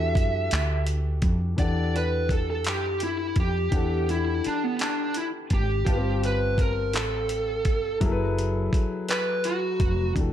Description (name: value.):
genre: slow six-eight R&B.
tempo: 56 BPM (dotted quarters).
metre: 6/8.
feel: straight.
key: unclear.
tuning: A4 = 440 Hz.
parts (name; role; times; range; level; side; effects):
smooth overdriven lead guitar; melody; 0.0-10.1 s; B3 to E5; -27 LUFS; right 1 dB; none.
warm grand piano; accompaniment; 0.0-10.3 s; E3 to A5; -32 LUFS; left 4 dB; none.
woody fretless electric bass; bass; 0.0-10.3 s; E1 to F#2; -27 LUFS; equal; analog chorus.
dusty soul sampler-style drum kit; drums; 0.2-10.3 s; handclaps, hi-hat, kick drum; -26 LUFS; equal; none.
room: digital ambience.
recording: dark, warm production.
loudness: -23 LUFS.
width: side -10 dB against mid.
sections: 0.0-1.6 A section; 1.6-10.2 B section.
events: lead electric guitar solo 1.6-10.2.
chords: 0.0 Em11; 5.9 G9sus4; 8.0 F#m11.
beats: 0.51 | 1.58 2.65 | 3.73 4.80 | 5.87 6.94 | 8.01 9.08 | 10.15.